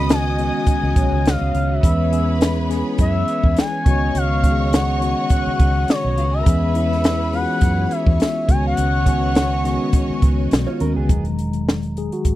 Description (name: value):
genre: lush 1970s-style soul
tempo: 104 BPM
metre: 4/4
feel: swing 54% on 16ths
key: unclear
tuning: A4 = 438 Hz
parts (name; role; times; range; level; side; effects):
- expressive synth lead; melody; 0.0-10.5 s; C#5 to B5; -23 LUFS; left 2 dB; chorus
- warm studio string section; second line; 0.0-10.8 s; E#4 to D#6; -30 LUFS; right 1 dB; slapback echo
- mellow tine electric piano; accompaniment; 0.0-12.4 s; D#3 to G#4; -24 LUFS; left 2 dB; medium stereo tremolo
- string machine, violins; sustained chords; 0.0-11.1 s; C#3 to D#5; -30 LUFS; equal; ensemble chorus
- vintage muted fingered electric bass; bass; 0.0-12.4 s; E1 to F#2; -21 LUFS; equal; none
- vibraphone with soft mallets; texture; 0.0-12.4 s; C#5 to A#5; -35 LUFS; right 2 dB; stereo widening
- compact cocktail drum kit; drums; 0.1-12.4 s; hi-hat, kick drum, snare drum; -17 LUFS; equal; none
- mellow electric guitar; riff; 10.7-11.2 s; B3 to C#5; -27 LUFS; right 5 dB; none
room: little or no reverb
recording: dry, close 1970s-style studio recording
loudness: -16 LUFS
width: side -15 dB against mid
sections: 0.0-11.1 A section; 11.1-12.4 B section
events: tine electric piano solo 11.1-12.4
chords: 0.0 C#9sus4; 1.8 E6; 3.9 C#9sus4; 6.5 E6; 8.5 C#9sus4; 11.1 Emaj7